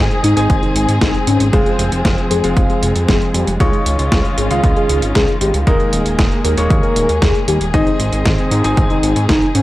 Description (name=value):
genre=italo disco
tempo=116 BPM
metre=4/4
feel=straight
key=unclear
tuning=A4 = 440 Hz
part: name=dark studio string section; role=sustained chords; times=0.0-9.6 s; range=Eb3 to Ab4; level=-22 LUFS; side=equal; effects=none
part: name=clear baby grand piano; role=stabs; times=0.0-9.6 s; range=Ab3 to Ab5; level=-22 LUFS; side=left 1 dB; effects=none
part: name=fat analog bass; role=bass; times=0.0-9.6 s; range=Eb1 to Ab2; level=-18 LUFS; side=equal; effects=none
part: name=dusty soul sampler-style drum kit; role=drums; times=0.1-9.6 s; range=hi-hat, snare drum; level=-21 LUFS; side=equal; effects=overdrive
part: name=soft octave-layered synth lead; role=melody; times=0.2-9.6 s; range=Db4 to Bb4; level=-19 LUFS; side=left 1 dB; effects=chorus, phaser, tape echo
part: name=electronic kick drum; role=drums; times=0.5-9.4 s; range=none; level=-16 LUFS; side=equal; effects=none
room=digital ambience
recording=dry, gritty hardware recording, cassette tape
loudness=-12 LUFS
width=side -16 dB against mid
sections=0.0-9.6 A section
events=none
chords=0.0 Ab; 1.5 Fm; 3.6 Dbadd9; 5.7 Ebsus4; 7.7 Ab